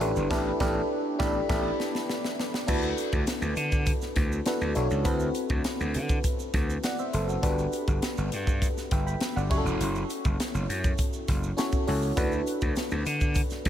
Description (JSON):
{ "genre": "polished 1980s jazz-funk pop", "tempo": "101 BPM", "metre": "4/4", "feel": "straight", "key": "D major", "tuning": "A4 = 439 Hz", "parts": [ { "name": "FM electric piano", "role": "accompaniment", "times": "0.0-13.7 s", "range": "C4 to B5", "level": "-30 LUFS", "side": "equal", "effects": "analog chorus" }, { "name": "gritty slap bass", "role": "bass", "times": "0.0-13.7 s", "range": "E1 to D3", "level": "-29 LUFS", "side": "equal", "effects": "overdrive" }, { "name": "crisp fusion drum kit", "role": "drums", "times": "0.0-13.7 s", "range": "crash cymbal, hi-hat, kick drum, snare drum", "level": "-29 LUFS", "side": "equal", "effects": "none" }, { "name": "tube shaker", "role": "percussion", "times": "0.2-13.6 s", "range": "none", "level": "-46 LUFS", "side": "right 8 dB", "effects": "none" } ], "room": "light reverb, small room ambience", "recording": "none", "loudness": "-25 LUFS", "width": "side -10 dB against mid", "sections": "0.0-2.7 A section; 2.7-13.7 B section", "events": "drum fill 0.3-2.7; band accent 0.3-2.7; FM electric piano fill 1.5-2.7", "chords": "0.0 A9sus4; 2.7 D6; 5.1 D13; 7.4 Gmaj9; 9.5 F#m7; 12.2 D6", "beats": "| 0.31 0.90 1.49 2.09 | 2.68 3.27 3.87 4.46 | 5.05 5.65 6.24 6.83 | 7.43 8.02 8.62 9.21 | 9.80 10.40 10.99 11.58 | 12.18 12.77 13.36" }